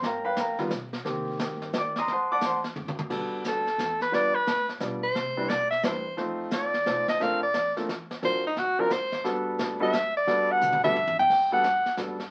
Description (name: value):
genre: jazz, small-group swing and bop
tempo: 176 BPM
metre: 3/4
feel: swing 64% on 8ths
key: G major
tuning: A4 = 438 Hz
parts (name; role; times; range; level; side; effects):
- warm grand piano; accompaniment; 0.0-12.2 s; D#3 to Eb6; -32 LUFS; equal; none
- upright bass; bass; 0.0-12.3 s; G1 to C3; -47 LUFS; equal; none
- jazz brush drum kit; drums; 0.0-12.3 s; brushed snare drum, crash cymbal, hi-hat, kick drum, snare drum, toms; -36 LUFS; equal; none
- clear soprano saxophone; melody; 3.5-12.0 s; Eb4 to G5; -26 LUFS; equal; none
room: moderate club reverb, RT60 0.6 s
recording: very old 78 rpm record, vinyl crackle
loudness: -27 LUFS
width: mono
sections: 0.0-3.1 A section; 3.1-11.3 A section; 11.3-12.3 A section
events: drum fill 2.8-3.1, 10.6-11.3; soprano saxophone solo 3.1-12.3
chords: 0.0 G7#9; 1.1 Cm7; 2.1 D7; 3.1 Gmaj9; 4.1 G7; 5.2 Cmaj9; 6.2 F7; 7.2 Bbmaj9; 8.2 D7alt; 9.3 Gmaj9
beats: | 0.03 0.37 0.71 | 1.05 1.39 1.74 | 2.08 2.42 2.76 | 3.10 3.44 3.79 | 4.13 4.47 4.81 | 5.15 5.50 5.84 | 6.18 6.52 6.86 | 7.21 7.55 7.89 | 8.23 8.57 8.91 | 9.25 9.59 9.94 | 10.28 10.62 10.96 | 11.30 11.64 11.98